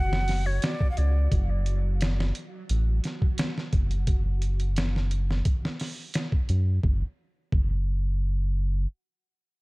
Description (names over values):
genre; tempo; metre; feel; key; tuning
trip hop; 87 BPM; 4/4; straight; unclear; A4 = 443 Hz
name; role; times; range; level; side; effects
breathy bright jazz flute; melody; 0.0-1.3 s; C#5 to F#5; -34 LUFS; equal; tape echo
round analog bass; bass; 0.0-8.9 s; F#1 to F#2; -24 LUFS; equal; none
backwards swelling texture; texture; 0.0-4.1 s; F#3 to F#4; -42 LUFS; right 2 dB; built-in reverb
trip hop sampler-style drum kit; drums; 0.1-7.7 s; hi-hat, kick drum, snare drum; -26 LUFS; equal; none
room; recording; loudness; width
digital ambience; dark, warm production; -24 LUFS; side -24 dB against mid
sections
0.0-6.8 A section; 6.8-9.6 B section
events
none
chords
0.0 Bm/F# (rootless); 1.3 N.C.